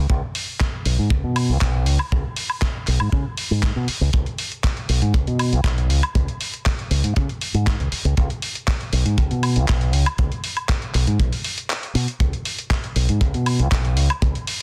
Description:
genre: nu-disco, nu disco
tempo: 119 BPM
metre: 4/4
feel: straight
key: unclear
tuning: A4 = 440 Hz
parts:
  - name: fingered electric bass with an envelope filter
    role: bass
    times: 0.0-14.3 s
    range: B1 to C#3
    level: -22 LUFS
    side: equal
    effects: sidechain pumping
  - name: kick drum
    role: drums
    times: 0.1-14.3 s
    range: none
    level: -24 LUFS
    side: equal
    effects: small room ambience
  - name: dusty soul sampler-style drum kit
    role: drums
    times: 0.3-14.6 s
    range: handclaps, hi-hat, woodblock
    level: -29 LUFS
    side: equal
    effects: small room ambience
room: little or no reverb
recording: dense, heavily limited modern master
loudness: -21 LUFS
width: mono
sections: 0.0-14.6 A section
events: kick drops out 11.7-12.2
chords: none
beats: | 0.10 0.61 1.11 1.61 | 2.12 2.62 3.13 3.63 | 4.13 4.64 5.14 5.65 | 6.15 6.66 7.16 7.66 | 8.17 8.67 9.18 9.68 | 10.19 10.69 11.19 11.70 | 12.20 12.71 13.21 13.71 | 14.22

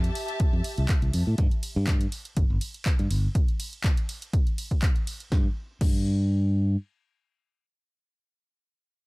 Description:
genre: filtered disco house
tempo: 122 BPM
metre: 4/4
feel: swing 54% on 16ths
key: unclear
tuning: A4 = 441 Hz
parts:
  - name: dark chamber string section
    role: sustained chords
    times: 0.0-1.4 s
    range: G4 to A5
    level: -36 LUFS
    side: equal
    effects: sidechain pumping
  - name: modern bright fingered electric bass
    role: bass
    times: 0.0-6.8 s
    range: G1 to A2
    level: -24 LUFS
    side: equal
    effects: tube saturation, sidechain pumping
  - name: punchy analog drum machine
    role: drums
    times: 0.0-6.0 s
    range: crash cymbal, handclaps, hi-hat, ride cymbal, snare drum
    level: -36 LUFS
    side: equal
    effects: none
  - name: electronic kick drum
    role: drums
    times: 0.4-6.0 s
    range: none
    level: -24 LUFS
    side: equal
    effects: none
room: little or no reverb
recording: echo-heavy mix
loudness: -23 LUFS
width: side -25 dB against mid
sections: 0.0-5.3 A section; 5.3-9.1 B section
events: drop 0.0-5.3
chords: 0.0 Fmaj9; 1.4 N.C.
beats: 0.40 0.89 | 1.38 1.88 2.37 2.86 | 3.35 3.84 4.33 4.83 | 5.32 5.81 6.30

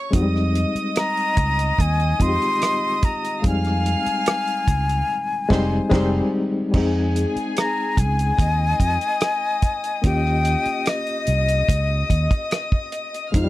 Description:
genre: lush 1970s-style soul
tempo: 73 BPM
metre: 4/4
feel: straight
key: F minor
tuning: A4 = 440 Hz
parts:
  - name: warm studio violin section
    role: second line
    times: 0.0-13.5 s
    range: Ab4 to F6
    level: -28 LUFS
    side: left 1 dB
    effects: none
  - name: barky reed electric piano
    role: accompaniment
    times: 0.0-13.5 s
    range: G3 to Ab4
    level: -25 LUFS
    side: left 2 dB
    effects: overdrive, fast tremolo
  - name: fingered electric bass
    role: bass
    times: 0.1-13.5 s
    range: F1 to F2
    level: -22 LUFS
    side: right 1 dB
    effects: none
  - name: warm soul drum kit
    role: drums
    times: 0.1-13.5 s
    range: crash cymbal, hi-hat, kick drum, rim click, snare drum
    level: -21 LUFS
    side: right 1 dB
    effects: none
  - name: breathy mellow silver concert flute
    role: melody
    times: 1.0-12.5 s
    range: Eb5 to C6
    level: -23 LUFS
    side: left 2 dB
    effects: none
  - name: mellow French horn section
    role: sustained chords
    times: 13.3-13.5 s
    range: C3 to F4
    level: -26 LUFS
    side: right 1 dB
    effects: none
room: little or no reverb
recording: dry, close 1970s-style studio recording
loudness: -18 LUFS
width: side -16 dB against mid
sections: 0.0-6.7 A section; 6.7-13.5 A section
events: band accent 5.1-6.7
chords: 0.1 Fm7; 3.4 Fm9; 6.7 Fm7; 10.0 Eb7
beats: | 0.14 0.96 1.79 2.61 | 3.44 4.26 5.09 5.92 | 6.74 7.57 8.39 9.22 | 10.04 10.87 11.69 12.52 | 13.34

